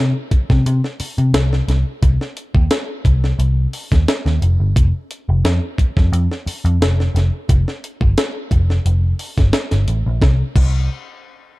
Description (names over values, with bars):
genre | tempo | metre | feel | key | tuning
funk | 88 BPM | 4/4 | straight | C dorian | A4 = 440 Hz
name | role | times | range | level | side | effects
vintage muted picked electric bass | bass | 0.0-10.9 s | F1 to C3 | -15 LUFS | equal | none
breakbeat sampler-style drum kit | drums | 0.3-10.7 s | crash cymbal, hi-hat, kick drum, snare drum | -18 LUFS | equal | none
room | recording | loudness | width
little or no reverb | dark, warm production | -14 LUFS | side -20 dB against mid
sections
0.0-10.2 A section; 10.2-11.6 B section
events
none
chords
none